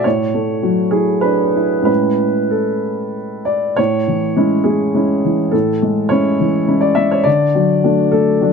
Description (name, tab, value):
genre	neoclassical minimalist piano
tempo	92-106 BPM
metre	3/4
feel	rubato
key	A major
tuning	A4 = 440 Hz
part	warm upright piano	solo	0.0-8.5 s	A2 to E5	-13 LUFS	equal	none
room	little or no reverb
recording	close, detailed microphones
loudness	-13 LUFS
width	side -5 dB against mid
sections	0.0-3.8 A section; 3.8-8.5 A section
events	none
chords	0.0 F#m7/A; 1.9 Amaj7; 7.3 D